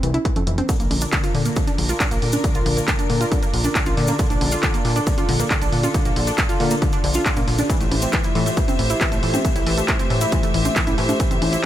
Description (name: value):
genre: uplifting trance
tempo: 137 BPM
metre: 4/4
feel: straight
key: unclear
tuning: A4 = 439 Hz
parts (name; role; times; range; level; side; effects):
- analog pluck; arpeggios; 0.0-11.6 s; D3 to F4; -24 LUFS; equal; chorus, sidechain pumping, dub echo
- fat analog bass; bass; 0.0-11.6 s; F1 to Bb2; -23 LUFS; equal; sidechain pumping
- punchy analog drum machine; drums; 0.0-11.6 s; congas, handclaps, hi-hat; -25 LUFS; equal; small room reverb
- electronic kick drum; drums; 0.3-11.3 s; none; -22 LUFS; equal; small room reverb
- warm studio string section; sustained chords; 0.7-11.7 s; A3 to E5; -26 LUFS; left 1 dB; sidechain pumping
- tube shaker; percussion; 0.7-11.6 s; none; -33 LUFS; left 4 dB; none
room: little or no reverb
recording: none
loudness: -17 LUFS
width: side -12 dB against mid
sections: 0.0-11.7 A section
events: none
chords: 0.0 Fmaj7(no3); 0.7 Bb; 7.7 Fmaj7/A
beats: 0.25 | 0.69 1.13 1.56 2.00 | 2.44 2.88 3.32 3.75 | 4.19 4.63 5.07 5.51 | 5.94 6.38 6.82 7.26 | 7.70 8.13 8.57 9.01 | 9.45 9.89 10.32 10.76 | 11.20 11.64